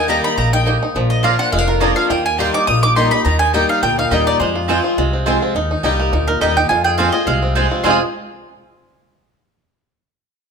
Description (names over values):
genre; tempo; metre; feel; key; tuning
bluegrass; 209 BPM; 4/4; swing 53% on 8ths; F dorian; A4 = 439 Hz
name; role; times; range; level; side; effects
mandolin; melody; 0.0-8.0 s; Bb4 to Eb6; -18 LUFS; right 2 dB; none
clear fiddle; second line; 0.0-4.5 s; Bb4 to Eb6; -25 LUFS; left 6 dB; none
picked swing-style acoustic guitar; accompaniment; 0.0-8.0 s; F2 to G4; -20 LUFS; left 4 dB; none
bluegrass banjo; arpeggios; 0.0-8.0 s; Eb3 to Ab4; -21 LUFS; right 2 dB; none
upright bass; bass; 0.0-8.0 s; F1 to F2; -20 LUFS; left 1 dB; none
mandolin; stabs; 0.1-8.0 s; Bb3 to Bb5; -22 LUFS; right 6 dB; none
room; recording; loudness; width
moderate large studio reverb, RT60 1.5 s; none; -14 LUFS; side -6 dB against mid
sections
0.0-5.6 A section; 5.6-7.8 B section; 7.8-9.0 C section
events
none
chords
0.0 Eb; 1.0 Bb; 2.1 Eb; 4.4 Fm; 5.6 Eb; 6.7 Fm